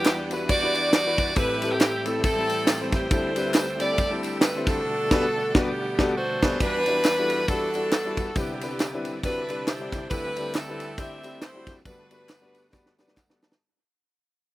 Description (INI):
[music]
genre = uptempo gospel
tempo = 137 BPM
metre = 4/4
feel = swing 59% on 8ths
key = G major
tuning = A4 = 441 Hz
[part]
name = edgy saxophone section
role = melody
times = 0.0-13.1 s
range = B3 to E5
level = -26 LUFS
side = equal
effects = none
[part]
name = warm concert grand piano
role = accompaniment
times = 0.0-13.6 s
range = G1 to A5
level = -30 LUFS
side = left 2 dB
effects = none
[part]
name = bright tonewheel organ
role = sustained chords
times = 0.0-13.6 s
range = B2 to F#5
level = -35 LUFS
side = right 2 dB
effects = slow rotary speaker, overdrive, chorus vibrato
[part]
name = tight funk drum kit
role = drums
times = 0.0-13.6 s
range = crash cymbal, kick drum, ride cymbal, snare drum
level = -25 LUFS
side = right 1 dB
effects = none
[part]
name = handclaps and tambourine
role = percussion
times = 0.1-13.5 s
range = none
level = -36 LUFS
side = left 1 dB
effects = none
[sound]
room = little or no reverb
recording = recorded outdoors, with no room sound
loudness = -22 LUFS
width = side -16 dB against mid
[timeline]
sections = 0.0-6.6 A section; 6.6-13.6 B section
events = band accent 4.9-6.6; fade-out 6.6-13.6; drum fill 12.7-13.6; grand piano fill 12.7-13.6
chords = 0.0 Em9; 1.4 Am7; 3.1 D9sus4; 4.9 Gmaj9; 6.6 Em9; 8.4 Cmaj9; 10.1 D9sus4; 11.9 Gmaj9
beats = 0.06 0.50 0.94 | 1.37 1.81 2.25 2.68 | 3.12 3.55 3.99 4.43 | 4.86 5.30 5.74 6.17 | 6.61 7.05 7.48 7.92 | 8.36 8.79 9.23 9.67 | 10.11 10.54 10.98 11.41 | 11.85 12.29 12.72 13.16